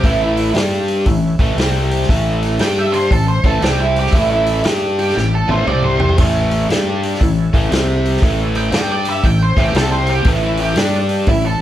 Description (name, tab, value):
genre	blues rock power trio and southern rock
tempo	117 BPM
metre	4/4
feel	swing 64% on 8ths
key	unclear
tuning	A4 = 440 Hz
part	octave-fuzz lead guitar	melody	0.0-11.6 s	D4 to G5	-20 LUFS	right 3 dB	distortion
part	overdriven tonewheel organ	sustained chords	0.0-11.6 s	G3 to C6	-31 LUFS	right 3 dB	none
part	biting overdriven guitar	riff	0.0-11.6 s	A2 to G4	-17 LUFS	left 1 dB	none
part	fuzz fingered electric bass	bass	0.0-11.6 s	A1 to G2	-20 LUFS	equal	overdrive
part	vintage drum kit	drums	0.0-11.4 s	crash cymbal, hi-hat, kick drum, snare drum, toms	-18 LUFS	equal	none
room	moderate large studio reverb, RT60 1.1 s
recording	band playing live in one room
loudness	-13 LUFS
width	side -12 dB against mid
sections	0.0-11.6 A section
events	lead electric guitar solo 0.0-11.6; tonewheel organ fill 1.3-2.1; drum fill 5.2-6.2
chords	0.0 A; 0.6 G5; 1.1 A; 1.6 C5; 2.1 A; 2.6 G5; 3.1 A; 3.6 C5; 4.1 A; 4.7 G5; 5.2 A; 5.7 C5; 6.2 A; 6.7 G5; 7.2 A; 7.7 C5; 8.2 A; 8.7 G5; 9.3 A; 9.8 C5; 10.3 A; 10.8 G5